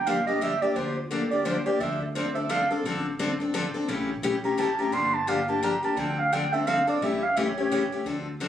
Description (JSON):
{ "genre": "acoustic string swing (jazz manouche)", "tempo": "172 BPM", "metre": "3/4", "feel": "swing 60% on 8ths", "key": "D minor", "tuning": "A4 = 441 Hz", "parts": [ { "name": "dark clarinet", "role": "second line", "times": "0.0-8.0 s", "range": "F4 to C6", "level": "-26 LUFS", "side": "right 3 dB", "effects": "none" }, { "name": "upright bass", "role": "bass", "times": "0.0-8.5 s", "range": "G1 to D2", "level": "-37 LUFS", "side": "equal", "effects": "none" }, { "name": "picked steel-string acoustic guitar", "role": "accompaniment", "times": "0.1-8.5 s", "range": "C#3 to A4", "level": "-27 LUFS", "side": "left 3 dB", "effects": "none" } ], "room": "moderate studio reverb, RT60 0.8 s", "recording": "recorded on a phone in the room, club reverb, compression", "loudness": "-24 LUFS", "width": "side -10 dB against mid", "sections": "0.0-8.1 A section", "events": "clarinet solo 0.0-8.1", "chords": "0.0 Gm7; 1.8 Dm7; 3.9 A7; 4.9 Gm7; 6.0 Dm7; 7.0 A7" }